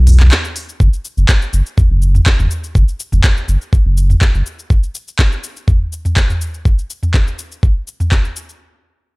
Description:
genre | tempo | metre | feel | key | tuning
afro house | 123 BPM | 4/4 | straight | unclear | A4 = 439 Hz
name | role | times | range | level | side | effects
warm sub bass | bass | 0.0-4.4 s | F#1 to B1 | -10 LUFS | equal | tube saturation, sidechain pumping
afro-pop drum kit | drums | 0.1-8.6 s | handclaps, hi-hat, shaker, toms | -18 LUFS | equal | none
electronic kick drum | drums | 0.8-8.2 s | none | -12 LUFS | equal | none
room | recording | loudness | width
digital ambience | dry, gritty hardware recording, transformer saturation | -12 LUFS | side -28 dB against mid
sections
0.8-8.6 A section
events
break 0.3-0.8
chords
none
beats
0.31 | 0.80 1.29 1.77 2.26 | 2.75 3.24 3.73 4.21 | 4.70 5.19 5.68 6.17 | 6.65 7.14 7.63 8.12

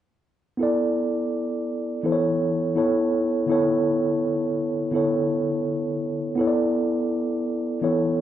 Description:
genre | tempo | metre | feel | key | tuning
hip hop | 83 BPM | 4/4 | swing 62% on 16ths | unclear | A4 = 439 Hz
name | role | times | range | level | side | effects
mellow tine electric piano | solo | 0.6-8.2 s | D3 to D5 | -21 LUFS | equal | medium stereo tremolo
room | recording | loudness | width
moderate large studio reverb, RT60 0.8 s | band playing live in one room, nothing above 10.7 kHz | -21 LUFS | side -11 dB against mid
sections
0.6-8.2 A section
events
none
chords
0.6 E7sus4; 2.0 Aadd9/E; 2.8 Aadd9; 3.5 Bm11/D; 6.4 E7sus4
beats
| 0.60 1.32 2.04 2.77 | 3.49 4.21 4.94 5.66 | 6.38 7.11 7.83

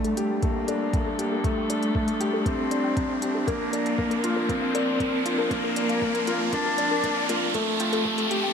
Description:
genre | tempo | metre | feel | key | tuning
piano and strings electronica | 118 BPM | 4/4 | straight | unclear | A4 = 440 Hz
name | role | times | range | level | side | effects
dark cello | melody | 0.0-8.5 s | A3 to D4 | -27 LUFS | equal | none
warm string quartet | sustained chords | 0.0-8.5 s | F3 to Bb4 | -32 LUFS | right 1 dB | sidechain pumping, low-pass filter
soft round pluck | arpeggios | 0.0-8.5 s | A4 to Bb5 | -34 LUFS | left 5 dB | chorus, sidechain pumping, ping-pong delay
warm grand piano | riff | 0.0-8.5 s | A3 to G4 | -29 LUFS | left 3 dB | ping-pong delay
electronic hi-hat | drums | 0.0-8.4 s | none | -36 LUFS | left 1 dB | overdrive
riser | sound effects | 0.0-8.5 s | none | -31 LUFS | right 1 dB | none
electronic kick drum | drums | 0.4-8.2 s | none | -29 LUFS | equal | overdrive
room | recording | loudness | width
moderate lush hall reverb, RT60 1.7 s, small room ambience | dark, warm production, high-pass filter | -22 LUFS | side -7 dB against mid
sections
0.0-8.5 A section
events
build-up 0.0-8.5; riser 0.0-8.5; filter sweep on synth arpeggio sound 0.0-8.5; filter sweep 0.0-8.5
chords
0.0 Gmadd9/C; 3.5 Bbadd9/C; 7.5 Fadd9/C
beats
0.43 0.94 | 1.44 1.95 2.46 2.97 | 3.48 3.99 4.50 5.00 | 5.51 6.02 6.53 7.04 | 7.55 8.05

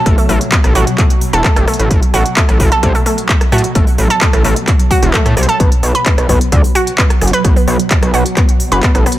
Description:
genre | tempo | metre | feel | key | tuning
driving peak-time techno | 130 BPM | 4/4 | straight | unclear | A4 = 442 Hz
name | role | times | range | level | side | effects
swarming drone | drone | 0.0-9.2 s | B2 to F#3 | -21 LUFS | right 1 dB | built-in reverb, sidechain pumping
analog pluck | riff | 0.1-9.2 s | A3 to B4 | -17 LUFS | right 1 dB | chorus, overdrive, sidechain pumping, tape echo
gritty driven synth bass | bass | 0.1-9.0 s | E1 to A2 | -14 LUFS | equal | sidechain pumping
electronic kick drum | drums | 0.1-8.9 s | none | -12 LUFS | equal | none
techno drum kit | drums | 0.1-9.2 s | handclaps, hi-hat, rim click | -18 LUFS | equal | none
room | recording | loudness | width
light reverb | none | -9 LUFS | side -14 dB against mid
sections
0.0-9.2 A section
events
none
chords
0.0 N.C.; 5.6 B5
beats
| 0.06 0.52 0.98 1.45 | 1.91 2.37 2.83 3.29 | 3.75 4.21 4.68 5.14 | 5.60 6.06 6.52 6.98 | 7.45 7.91 8.37 8.83

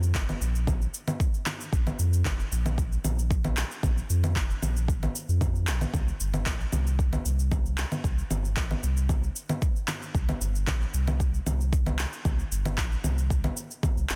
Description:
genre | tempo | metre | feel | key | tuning
organic downtempo | 114 BPM | 4/4 | straight | unclear | A4 = 442 Hz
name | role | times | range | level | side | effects
warm sub bass | bass | 0.0-14.2 s | F1 to F2 | -29 LUFS | equal | sidechain pumping
electronic cabasa, handclaps and congas | drums | 0.0-14.2 s | none | -34 LUFS | equal | none
electronic kick drum | drums | 0.1-13.9 s | none | -30 LUFS | equal | none
room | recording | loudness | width
little or no reverb | dense, heavily limited modern master | -28 LUFS | mono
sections
0.0-14.2 A section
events
none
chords
none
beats
0.15 0.67 1.20 | 1.73 2.25 2.78 3.31 | 3.83 4.36 4.88 5.41 | 5.94 6.46 6.99 7.52 | 8.04 8.57 9.10 9.62 | 10.15 10.67 11.20 11.73 | 12.25 12.78 13.30 13.83

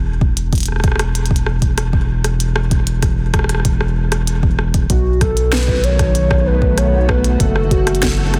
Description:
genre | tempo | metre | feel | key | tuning
IDM | 96 BPM | 4/4 | straight | unclear | A4 = 440 Hz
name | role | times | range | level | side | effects
rubbery square bass | bass | 0.0-8.4 s | E1 to B1 | -19 LUFS | equal | none
electronic kick drum | drums | 0.2-8.2 s | none | -20 LUFS | equal | small room ambience
glitchy drum kit | drums | 0.4-8.4 s | hi-hat, rim click, snare drum | -25 LUFS | equal | soft clipping on snare, small room ambience, digital delay
warbly nostalgic lead | melody | 4.9-8.3 s | F#4 to C#5 | -22 LUFS | equal | chorus, tremolo
soft string machine | sustained chords | 5.9-8.4 s | D#3 to A4 | -25 LUFS | equal | ensemble chorus
room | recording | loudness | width
light reverb | dense, heavily limited modern master | -16 LUFS | mono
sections
0.0-8.4 A section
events
none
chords
0.0 N.C.; 4.9 B7; 7.4 F#m7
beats
0.53 1.15 1.78 | 2.40 3.03 3.65 4.28 | 4.90 5.53 6.15 6.78 | 7.40 8.03

